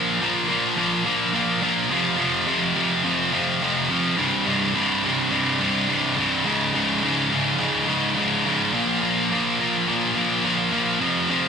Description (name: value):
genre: metal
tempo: 106 BPM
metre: 4/4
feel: straight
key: unclear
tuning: A4 = 440 Hz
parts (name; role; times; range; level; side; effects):
- scooped high-gain guitar; solo; 0.0-11.5 s; C2 to Bb3; -19 LUFS; equal; distortion
room: moderate studio reverb, RT60 0.5 s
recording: band playing live in one room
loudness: -19 LUFS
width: side -6 dB against mid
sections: 0.0-11.5 A section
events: none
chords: 0.0 Bb5; 1.9 F5; 4.2 C5; 6.5 Db5; 8.7 Bb5